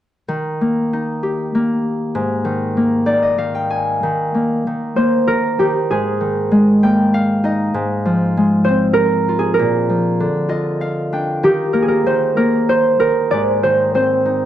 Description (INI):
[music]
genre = children's music, lullaby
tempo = 97 BPM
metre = 3/4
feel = rubato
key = Eb major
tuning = A4 = 439 Hz
[part]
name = Celtic harp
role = accompaniment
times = 0.3-14.5 s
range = Ab2 to Ab5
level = -16 LUFS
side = left 1 dB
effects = none
[part]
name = concert harp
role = melody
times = 5.0-14.5 s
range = G4 to D5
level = -16 LUFS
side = right 2 dB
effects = none
[sound]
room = moderate recital hall reverb, RT60 1.3 s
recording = dark, warm production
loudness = -14 LUFS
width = side -11 dB against mid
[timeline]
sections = 0.3-4.0 A section; 4.0-14.5 B section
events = harp fill 2.8-4.0, 6.5-7.7, 10.2-11.4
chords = 0.3 Eb; 2.1 Absus2; 4.0 Eb5; 5.9 Absus2; 7.7 Fm/Ab; 9.6 Bb; 11.4 Eb5; 13.3 Ab